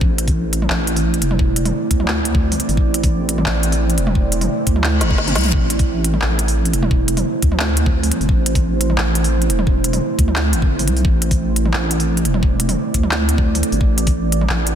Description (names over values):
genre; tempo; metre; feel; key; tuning
half-time drum and bass; 174 BPM; 4/4; swing 53% on 16ths, half-time; A minor; A4 = 440 Hz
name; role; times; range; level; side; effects
deep dark ambient pad; sustained chords; 0.0-14.8 s; A3 to D5; -22 LUFS; right 2 dB; chorus, built-in reverb, sidechain pumping
deep soft wobble bass; bass; 0.0-14.8 s; E1 to D2; -19 LUFS; equal; chorus
electronic kick drum; drums; 0.0-14.1 s; none; -18 LUFS; equal; none
organic electronic drum kit; drums; 0.2-14.7 s; handclaps, hi-hat, snare drum, toms; -22 LUFS; equal; overdrive
reverse cymbal; sound effects; 4.9-5.5 s; none; -26 LUFS; left 4 dB; none
room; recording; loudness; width
digital ambience; dense, heavily limited modern master; -15 LUFS; side -9 dB against mid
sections
0.0-14.8 A section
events
reverse cymbal 4.9-5.5; drum fill 5.0-5.5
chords
0.0 Am